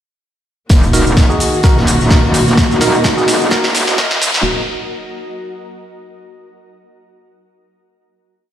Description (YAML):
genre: bass house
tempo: 128 BPM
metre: 4/4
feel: swing 54% on 16ths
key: Eb minor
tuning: A4 = 440 Hz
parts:
  - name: dark chamber string section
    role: sustained chords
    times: 0.7-4.4 s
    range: Eb3 to Gb4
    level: -20 LUFS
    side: left 1 dB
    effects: sidechain pumping
  - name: metallic wobble bass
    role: bass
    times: 0.7-4.4 s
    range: Eb1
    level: -15 LUFS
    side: equal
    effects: chorus, tube saturation, sidechain pumping
  - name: electronic kick drum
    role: drums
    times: 0.7-4.1 s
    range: none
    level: -11 LUFS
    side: equal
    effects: none
  - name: house drum kit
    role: drums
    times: 0.7-4.4 s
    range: hi-hat, shaker, snare drum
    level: -18 LUFS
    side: equal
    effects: high-pass filter on snare, high-pass filter on perc, high-pass filter on hats
  - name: raw garage drum kit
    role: drums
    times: 0.7-4.4 s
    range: hi-hat, snare drum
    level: -25 LUFS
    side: equal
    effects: none
  - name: riser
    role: sound effects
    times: 2.4-4.4 s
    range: none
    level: -24 LUFS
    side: equal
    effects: none
  - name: granular cloud pad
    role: texture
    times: 1.9-4.4 s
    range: Gb4 to Bb5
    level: -23 LUFS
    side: right 1 dB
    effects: built-in reverb, sidechain pumping
  - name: percussive organ stab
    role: stabs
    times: 0.9-4.1 s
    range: Eb4 to Bb4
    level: -19 LUFS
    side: right 1 dB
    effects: chorus, sidechain pumping, dub echo
room: light reverb, small room ambience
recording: played on a big sound system in a bare room, stone room reverb, high-pass filter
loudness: -10 LUFS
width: side -11 dB against mid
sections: 0.7-4.4 build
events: build-up 0.7-4.4; drum fill 0.7-4.4; filter sweep on synth stab 0.7-4.4; filter sweep 0.7-4.4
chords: 0.7 Ebm